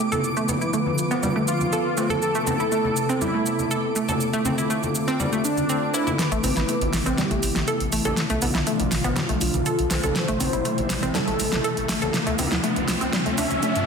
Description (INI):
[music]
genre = progressive house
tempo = 121 BPM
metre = 4/4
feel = straight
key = A minor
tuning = A4 = 440 Hz
[part]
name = airy breathy pad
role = sustained chords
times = 0.0-13.9 s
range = B2 to B4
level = -28 LUFS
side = left 1 dB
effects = chorus
[part]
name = analog pluck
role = arpeggios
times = 0.0-13.7 s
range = G3 to A4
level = -26 LUFS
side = equal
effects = chorus, digital delay
[part]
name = twinkling granular texture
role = texture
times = 0.0-6.2 s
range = D6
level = -34 LUFS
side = equal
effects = built-in reverb
[part]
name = pop drum kit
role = drums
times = 0.1-13.9 s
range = hi-hat, shaker, snare drum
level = -28 LUFS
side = right 1 dB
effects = none
[part]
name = congas and cowbell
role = percussion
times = 0.1-13.6 s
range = none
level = -32 LUFS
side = left 2 dB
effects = none
[part]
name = wide unison lead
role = melody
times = 1.5-13.9 s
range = D4 to E5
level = -27 LUFS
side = equal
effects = analog chorus, digital delay
[part]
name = riser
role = sound effects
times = 9.0-13.9 s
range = none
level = -31 LUFS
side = right 1 dB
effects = none
[part]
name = round analog bass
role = bass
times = 6.3-13.8 s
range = A1 to G2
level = -29 LUFS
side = equal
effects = none
[sound]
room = moderate digital room reverb, RT60 1.1 s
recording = dense, heavily limited modern master, high-pass filter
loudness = -20 LUFS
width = side -6 dB against mid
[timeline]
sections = 0.0-6.2 A section; 6.2-13.9 B section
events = filter sweep on synth pluck 0.0-6.2; filter sweep on analog synth pad 0.0-6.2; build-up 6.2-13.9; drum fill 6.2-13.9; filter sweep on analog synth lead 6.2-13.9; riser 9.0-13.9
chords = 0.2 Bdim; 2.2 Amadd9; 4.2 Dm7; 6.2 Amadd9; 8.2 Bdim; 10.2 Amadd9; 12.1 Dm7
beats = | 0.24 0.73 1.23 1.73 | 2.22 2.72 3.21 3.71 | 4.21 4.70 5.20 5.69 | 6.19 6.68 7.18 7.68 | 8.17 8.67 9.16 9.66 | 10.16 10.65 11.15 11.64 | 12.14 12.64 13.13 13.63